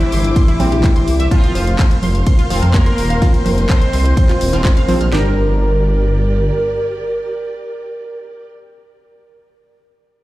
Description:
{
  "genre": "melodic techno",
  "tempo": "126 BPM",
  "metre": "4/4",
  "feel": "straight",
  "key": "G minor",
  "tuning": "A4 = 444 Hz",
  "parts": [
    { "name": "resonant sweep polysynth", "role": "melody", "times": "0.0-8.5 s", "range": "E3 to C5", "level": "-20 LUFS", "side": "equal", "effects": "chorus, sidechain pumping, tape echo" },
    { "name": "warm studio string section", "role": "sustained chords", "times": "0.0-8.5 s", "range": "G4 to D6", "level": "-28 LUFS", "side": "right 1 dB", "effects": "sidechain pumping" },
    { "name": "synth brass stab", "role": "stabs", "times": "0.0-8.5 s", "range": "C3 to G4", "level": "-26 LUFS", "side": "right 1 dB", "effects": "chorus, phaser, sidechain pumping, ping-pong delay" },
    { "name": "house drum kit", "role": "drums", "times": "0.0-5.1 s", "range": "congas, handclaps, hi-hat, ride cymbal", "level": "-24 LUFS", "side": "right 1 dB", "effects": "overdrive, sidechain pumping on hats, sidechain pumping on perc, sidechain pumping on cymbals" },
    { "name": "wide unison pluck", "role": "arpeggios", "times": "0.1-5.3 s", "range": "E4 to F6", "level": "-27 LUFS", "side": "right 1 dB", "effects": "sidechain pumping, ping-pong delay" },
    { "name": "dark detuned saw bass", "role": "bass", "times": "0.1-6.5 s", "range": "Eb1 to F2", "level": "-16 LUFS", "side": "equal", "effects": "sidechain pumping" },
    { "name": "house drum kit", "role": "drums", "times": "0.4-5.2 s", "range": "kick drum, snare drum", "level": "-13 LUFS", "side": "equal", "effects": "overdrive" }
  ],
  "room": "digital ambience",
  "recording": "played on a big sound system in a bare room, large studio reverb",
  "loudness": "-12 LUFS",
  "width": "side -17 dB against mid",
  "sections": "0.0-5.1 A section; 5.1-8.9 B section",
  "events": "drop 0.0-5.1",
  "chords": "0.0 C; 1.3 Fsus4; 5.1 Gm",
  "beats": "0.36 0.84 | 1.31 1.79 2.27 2.74 | 3.22 3.69 4.17 4.65 | 5.12 5.60 6.08 6.55 | 7.03 7.50 7.98 8.46"
}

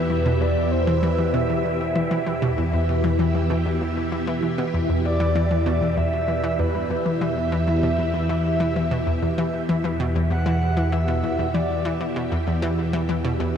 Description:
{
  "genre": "ambient, sequencer-driven space music",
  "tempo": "97 BPM",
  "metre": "4/4",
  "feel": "straight",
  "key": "E minor",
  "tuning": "A4 = 440 Hz",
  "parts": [
    { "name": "breathy flute-like synth lead", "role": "melody", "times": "0.0-12.0 s", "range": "B4 to F#5", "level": "-28 LUFS", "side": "equal", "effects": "lush chorus, shimmer reverb, ping-pong delay" },
    { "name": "phased string machine", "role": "sustained chords", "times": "0.0-13.6 s", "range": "B2 to E5", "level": "-26 LUFS", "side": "right 1 dB", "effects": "ensemble chorus, phaser, shimmer reverb" },
    { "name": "analog pluck", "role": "riff", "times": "0.0-13.5 s", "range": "E2 to E3", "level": "-25 LUFS", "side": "left 1 dB", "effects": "chorus, shimmer reverb, ping-pong delay" },
    { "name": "fat analog bass", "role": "bass", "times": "0.0-13.6 s", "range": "E2", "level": "-25 LUFS", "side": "equal", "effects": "tube saturation" }
  ],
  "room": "wet huge ambient reverb, RT60 8.4 s",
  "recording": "dark, warm production",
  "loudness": "-20 LUFS",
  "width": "side -8 dB against mid",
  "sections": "0.0-13.6 A section",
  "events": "none",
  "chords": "0.0 Em",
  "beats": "0.41 1.03 1.65 | 2.27 2.88 3.50 4.12 | 4.74 5.36 5.98 6.59 | 7.21 7.83 8.45 9.07 | 9.69 10.31 10.93 11.54 | 12.16 12.78 13.40"
}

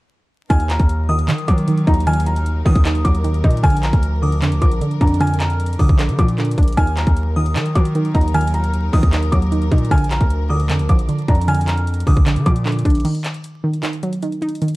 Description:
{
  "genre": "hip hop, trap",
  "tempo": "153 BPM",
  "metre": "4/4",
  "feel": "half-time",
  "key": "Eb harmonic minor",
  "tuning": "A4 = 440 Hz",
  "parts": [
    { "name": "felt-muted upright piano", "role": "melody", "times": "0.5-13.0 s", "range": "Ab5 to Eb6", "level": "-25 LUFS", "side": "equal", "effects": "low-pass filter, ping-pong delay" },
    { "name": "delicate synth tine bell", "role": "second line", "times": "0.5-12.6 s", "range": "D6 to F6", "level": "-32 LUFS", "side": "left 2 dB", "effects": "chorus, ping-pong delay" },
    { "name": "warbly dusty pluck", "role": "accompaniment", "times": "0.5-14.8 s", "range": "D3 to Eb4", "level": "-21 LUFS", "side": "right 1 dB", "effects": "chorus, low-pass filter" },
    { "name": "dark studio string section", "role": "sustained chords", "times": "0.5-13.0 s", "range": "F3 to Bb4", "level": "-29 LUFS", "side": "left 1 dB", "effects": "none" },
    { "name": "distorted 808-style bass", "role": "bass", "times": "0.5-13.0 s", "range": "Bb1 to Eb3", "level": "-19 LUFS", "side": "equal", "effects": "distortion" },
    { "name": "trap drum kit", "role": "drums", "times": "0.5-14.7 s", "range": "crash cymbal, handclaps, hi-hat, kick drum", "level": "-17 LUFS", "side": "equal", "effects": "none" }
  ],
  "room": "little or no reverb",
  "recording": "dark, warm production, vinyl crackle",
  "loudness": "-15 LUFS",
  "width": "side -20 dB against mid",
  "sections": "0.5-13.0 A section; 13.0-14.8 B section",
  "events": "break 13.0-14.8",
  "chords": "0.5 Ebm; 3.6 Bb; 6.8 Ebm; 9.9 Bb; 13.0 Ebm",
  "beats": "| 0.50 0.89 1.28 1.68 | 2.07 2.46 2.85 3.25 | 3.64 4.03 4.42 4.81 | 5.21 5.60 5.99 6.38 | 6.77 7.17 7.56 7.95 | 8.34 8.73 9.13 9.52 | 9.91 10.30 10.70 11.09 | 11.48 11.87 12.26 12.66 | 13.05 13.44 13.83 14.22 | 14.62"
}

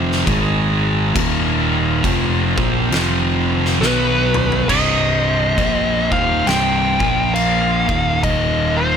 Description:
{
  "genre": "stoner and doom metal",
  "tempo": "68 BPM",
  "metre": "4/4",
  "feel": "swing 61% on 8ths",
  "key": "unclear",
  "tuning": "A4 = 440 Hz",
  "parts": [
    { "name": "tonewheel organ", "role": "sustained chords", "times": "0.0-9.0 s", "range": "Eb3 to Db5", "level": "-27 LUFS", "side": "equal", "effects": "slow rotary speaker" },
    { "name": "thick fuzz guitar", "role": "riff", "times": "0.0-9.0 s", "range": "C2 to B3", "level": "-22 LUFS", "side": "left 10 dB", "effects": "distortion" },
    { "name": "thick fuzz guitar", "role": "riff", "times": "0.0-9.0 s", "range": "C2 to B3", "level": "-21 LUFS", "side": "right 10 dB", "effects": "distortion" },
    { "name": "fingered electric bass", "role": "bass", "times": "0.0-9.0 s", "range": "C1 to B1", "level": "-24 LUFS", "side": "equal", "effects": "overdrive" },
    { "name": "oversized low-tuned drum kit", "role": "drums", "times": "0.1-8.5 s", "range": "crash cymbal, kick drum, snare drum, toms", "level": "-21 LUFS", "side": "equal", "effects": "none" },
    { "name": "fuzz lead guitar", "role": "melody", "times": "3.8-9.0 s", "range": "B4 to G5", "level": "-19 LUFS", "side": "left 1 dB", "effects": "wah, distortion, ping-pong delay" }
  ],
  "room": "light reverb",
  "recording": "none",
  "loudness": "-14 LUFS",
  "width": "side -7 dB against mid",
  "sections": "0.0-4.7 A section; 4.7-9.0 B section",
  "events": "drum fill 3.8-4.7",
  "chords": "0.3 Ab5; 1.2 Eb5; 2.0 F5; 3.8 B5; 4.7 Cm; 6.9 Bb5; 7.8 Eb5",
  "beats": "0.27 | 1.15 2.04 2.92 3.80 | 4.69 5.57 6.46 7.34 | 8.23"
}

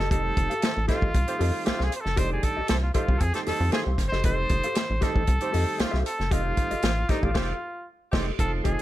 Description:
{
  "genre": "funk",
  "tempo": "116 BPM",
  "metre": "4/4",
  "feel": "straight",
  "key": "F mixolydian",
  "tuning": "A4 = 440 Hz",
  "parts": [
    { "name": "clear trumpet", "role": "melody", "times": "0.0-8.8 s", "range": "Eb4 to C5", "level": "-29 LUFS", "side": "equal", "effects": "plate reverb" },
    { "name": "mellow electric guitar", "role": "accompaniment", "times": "0.0-8.8 s", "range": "G4 to F5", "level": "-34 LUFS", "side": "left 4 dB", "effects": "lush chorus, plate reverb" },
    { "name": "rubbery square bass", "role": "bass", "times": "0.0-8.8 s", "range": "F1 to F2", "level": "-27 LUFS", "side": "equal", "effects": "none" },
    { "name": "warm soul drum kit", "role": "drums", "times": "0.0-8.8 s", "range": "crash cymbal, hi-hat, kick drum, snare drum", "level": "-27 LUFS", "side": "equal", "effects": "none" },
    { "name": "tonewheel organ", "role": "stabs", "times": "0.1-8.8 s", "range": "Eb3 to D4", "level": "-34 LUFS", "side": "right 4 dB", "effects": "slow rotary speaker, plate reverb" },
    { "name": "warm horn section", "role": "second line", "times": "0.6-8.3 s", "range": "A3 to C5", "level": "-37 LUFS", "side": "right 3 dB", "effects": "plate reverb" }
  ],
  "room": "light reverb",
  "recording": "none",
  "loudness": "-23 LUFS",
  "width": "side -14 dB against mid",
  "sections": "0.0-8.4 A section",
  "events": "band accent 7.4-8.4",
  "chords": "0.0 F9",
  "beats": "| 0.11 0.62 1.14 1.66 | 2.17 2.69 3.21 3.72 | 4.24 4.76 5.28 5.79 | 6.31 6.83 7.35 7.87 | 8.39"
}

